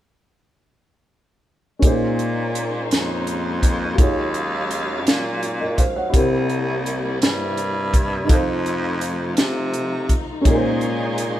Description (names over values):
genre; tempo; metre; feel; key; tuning
slow gospel; 56 BPM (dotted quarters); 6/8; straight; Bb minor; A4 = 440 Hz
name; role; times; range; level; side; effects
warm upright piano; accompaniment; 1.8-11.4 s; Bb2 to Gb5; -24 LUFS; equal; none
warm studio string section; sustained chords; 1.8-11.4 s; C3 to F5; -30 LUFS; left 1 dB; none
raspy baritone saxophone; bass; 1.8-11.4 s; C2 to C3; -24 LUFS; equal; none
tight funk drum kit; drums; 1.8-11.3 s; hi-hat, kick drum, snare drum; -18 LUFS; equal; none
bright tonewheel organ; sustained chords; 10.4-11.4 s; Ab3 to C5; -28 LUFS; right 1 dB; fast rotary speaker, overdrive, chorus vibrato
room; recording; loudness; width
moderate stone room reverb, RT60 1.1 s; band playing live in one room; -18 LUFS; side -13 dB against mid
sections
1.8-11.4 A section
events
none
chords
1.8 Bbm11; 4.0 Ebm11; 6.1 C7; 8.3 F7; 10.4 Bbm11